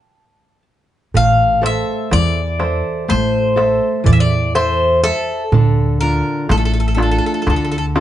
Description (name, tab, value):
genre	greek folk, Greek bouzouki band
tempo	123 BPM (eighths)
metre	9/8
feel	straight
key	A minor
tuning	A4 = 439 Hz
part	Greek bouzouki	melody	0.0-7.8 s	A4 to A5	-18 LUFS	left 1 dB	plate reverb
part	fingerpicked plugged-in steel-string acoustic guitar	accompaniment	1.1-8.0 s	D3 to E5	-20 LUFS	left 1 dB	none
part	upright bass	bass	1.1-8.0 s	A1 to E2	-18 LUFS	equal	none
part	darbuka	percussion	1.1-8.0 s	none	-17 LUFS	right 3 dB	none
room	moderate small room reverb, RT60 0.5 s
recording	nothing above 11.0 kHz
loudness	-13 LUFS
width	side -12 dB against mid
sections	0.0-1.1 A section; 1.1-8.0 B section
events	stop 0.0-1.1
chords	0.0 N.C.; 1.1 Am; 5.5 Dm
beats	0.15 0.64 | 1.13 1.62 2.11 2.59 3.08 3.57 4.06 4.54 5.03 | 5.52 6.01 6.50 6.98 7.47 7.96